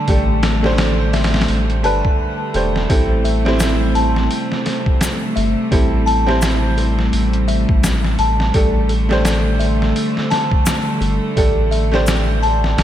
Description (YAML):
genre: trip hop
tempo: 85 BPM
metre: 4/4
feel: swing 58% on 16ths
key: unclear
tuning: A4 = 440 Hz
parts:
  - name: clear upright piano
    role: accompaniment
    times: 0.0-12.8 s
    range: A3 to C5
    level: -22 LUFS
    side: right 1 dB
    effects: harmonic tremolo, tape echo
  - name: rich studio string section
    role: sustained chords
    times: 0.0-12.8 s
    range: C3 to A3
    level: -22 LUFS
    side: equal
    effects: none
  - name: music box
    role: arpeggios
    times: 0.0-12.8 s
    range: A4 to A5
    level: -24 LUFS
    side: left 3 dB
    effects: vintage 12-bit sampler grit, tape echo
  - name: round analog bass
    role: bass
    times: 0.1-12.8 s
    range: E1 to A1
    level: -18 LUFS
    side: equal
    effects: tube saturation
  - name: trip hop sampler-style drum kit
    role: drums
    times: 0.1-12.8 s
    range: hi-hat, kick drum, snare drum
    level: -20 LUFS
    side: equal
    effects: overdrive, studio reverb, gated reverb
  - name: tube shaker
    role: percussion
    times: 3.6-12.2 s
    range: none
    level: -31 LUFS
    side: left 5 dB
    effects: none
room: light reverb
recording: bright 1980s-style digital production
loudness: -14 LUFS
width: side -11 dB against mid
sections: 0.0-12.8 A section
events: none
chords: 0.0 Gsus2; 2.9 Am7; 8.5 Gsus2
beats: | 0.07 0.78 1.49 2.19 | 2.90 3.60 4.31 5.02 | 5.72 6.43 7.13 7.84 | 8.55 9.25 9.96 10.66 | 11.37 12.07 12.78